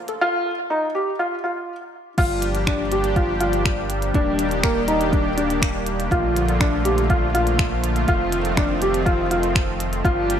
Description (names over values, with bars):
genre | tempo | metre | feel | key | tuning
piano and strings electronica | 122 BPM | 4/4 | straight | G minor | A4 = 439 Hz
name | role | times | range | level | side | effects
lush unison pad | sustained chords | 0.0-10.4 s | D3 to G4 | -24 LUFS | equal | chorus
warm sub bass | bass | 0.0-10.4 s | Eb1 to Bb1 | -26 LUFS | equal | sidechain pumping
minimal click drum kit | drums | 0.1-10.4 s | crash cymbal, finger snaps, hi-hat | -28 LUFS | equal | overdrive, high-pass filter on hats, high-pass filter on cymbals, high-pass filter on snare
dark upright piano | riff | 0.2-10.3 s | Bb3 to G4 | -22 LUFS | equal | digital delay
electronic kick drum | drums | 2.2-10.1 s | none | -22 LUFS | equal | overdrive
room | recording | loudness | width
light reverb | high-pass filter | -18 LUFS | side -9 dB against mid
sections
0.0-2.2 A section; 2.2-10.4 B section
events
build-up 0.0-2.2; drop 2.2-10.4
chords
0.2 N.C.; 2.2 Gm7; 4.1 Ebmaj7; 6.1 Bbmaj7; 8.1 F7